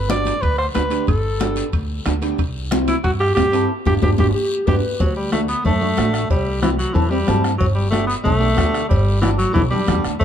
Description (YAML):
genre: latin, cumbia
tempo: 184 BPM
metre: 4/4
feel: straight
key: G major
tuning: A4 = 440 Hz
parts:
  - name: bright alto saxophone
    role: melody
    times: 0.0-10.2 s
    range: E3 to D5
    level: -21 LUFS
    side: equal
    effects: none
  - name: upright bass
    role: bass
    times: 0.0-10.2 s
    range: G1 to G2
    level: -22 LUFS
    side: equal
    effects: none
  - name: electric guitar at the edge of break-up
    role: accompaniment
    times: 0.1-10.1 s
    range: A3 to A4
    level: -24 LUFS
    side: right 2 dB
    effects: none
  - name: bombo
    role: percussion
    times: 0.1-10.2 s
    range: none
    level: -22 LUFS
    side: left 1 dB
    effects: none
  - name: congas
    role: percussion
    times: 0.1-10.2 s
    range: none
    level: -26 LUFS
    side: left 4 dB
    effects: none
  - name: guiro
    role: percussion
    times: 0.1-10.2 s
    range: none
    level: -36 LUFS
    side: left 5 dB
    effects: none
  - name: timbales and cowbell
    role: percussion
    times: 0.1-10.2 s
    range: none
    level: -32 LUFS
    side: right 6 dB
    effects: none
  - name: breathy clarinet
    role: second line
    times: 4.0-5.0 s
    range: F#4 to B4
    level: -25 LUFS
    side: left 1 dB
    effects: none
room: moderate plate reverb, RT60 2.5 s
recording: dark, warm production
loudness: -16 LUFS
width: side -9 dB against mid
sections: 0.0-5.0 A section; 5.0-10.2 B section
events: band accent 3.7-5.0; drum fill 4.2-5.0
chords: 0.0 Gadd9; 2.4 C; 3.7 G; 5.0 D; 6.3 C; 7.6 G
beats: 0.10 0.43 0.76 | 1.08 1.41 1.73 2.06 | 2.39 2.71 3.04 3.37 | 3.69 4.02 4.35 4.67 | 5.00 5.33 5.65 5.98 | 6.30 6.63 6.96 7.28 | 7.61 7.93 8.26 8.58 | 8.91 9.23 9.56 9.88 | 10.21